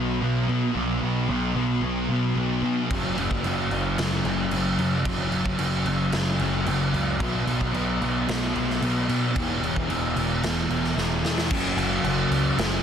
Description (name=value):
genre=rock, shoegaze and dream pop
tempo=112 BPM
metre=4/4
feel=straight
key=unclear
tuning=A4 = 438 Hz
part: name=thick fuzz guitar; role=riff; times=0.0-12.8 s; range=E2 to B3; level=-25 LUFS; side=equal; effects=distortion, wide subtle chorus
part: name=growling picked electric bass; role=bass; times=0.0-12.8 s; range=E1 to B2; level=-29 LUFS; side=equal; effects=overdrive
part: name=raw garage drum kit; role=drums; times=2.9-12.7 s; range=crash cymbal, kick drum, snare drum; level=-27 LUFS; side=right 1 dB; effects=none
room=small room ambience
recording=dense, heavily limited modern master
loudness=-22 LUFS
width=side -8 dB against mid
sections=0.0-11.5 A section; 11.5-12.8 B section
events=drum fill 11.0-11.5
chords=0.0 B5; 2.9 F#5; 7.2 B5; 9.4 E5; 11.5 F#5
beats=0.22 | 0.76 1.29 1.83 2.37 | 2.90 3.44 3.98 4.51 | 5.05 5.59 6.13 6.67 | 7.20 7.74 8.28 8.82 | 9.36 9.90 10.44 10.97 | 11.51 12.05 12.59